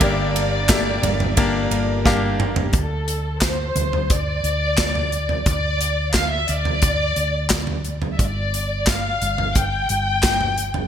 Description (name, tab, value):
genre	piano-driven pop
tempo	88 BPM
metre	4/4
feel	straight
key	D minor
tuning	A4 = 442 Hz
part	dark studio violin section	melody	0.0-10.9 s	A4 to G5	-23 LUFS	left 2 dB	none
part	warm French horn section	second line	0.0-2.4 s	Bb2 to D4	-32 LUFS	left 6 dB	none
part	bright concert grand piano	accompaniment	0.0-2.8 s	G2 to F5	-23 LUFS	left 4 dB	none
part	chorused pulse-width pad	sustained chords	0.0-2.7 s	D3 to G4	-32 LUFS	equal	none
part	direct-recorded clean electric guitar	riff	0.0-2.7 s	G2 to Bb4	-28 LUFS	right 6 dB	wide subtle chorus
part	hollow-body short-scale fingered electric bass	bass	0.0-10.9 s	G1 to D2	-25 LUFS	equal	none
part	modern studio drum kit	drums	0.0-10.9 s	handclaps, hi-hat, kick drum, ride cymbal, snare drum, toms	-21 LUFS	right 1 dB	gated reverb
room	light reverb, studio ambience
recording	bright 1980s-style digital production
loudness	-18 LUFS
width	side -9 dB against mid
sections	0.0-2.7 A section; 2.7-10.9 B section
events	drum fill 2.1-2.7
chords	0.0 Gm; 2.7 D5; 8.2 G5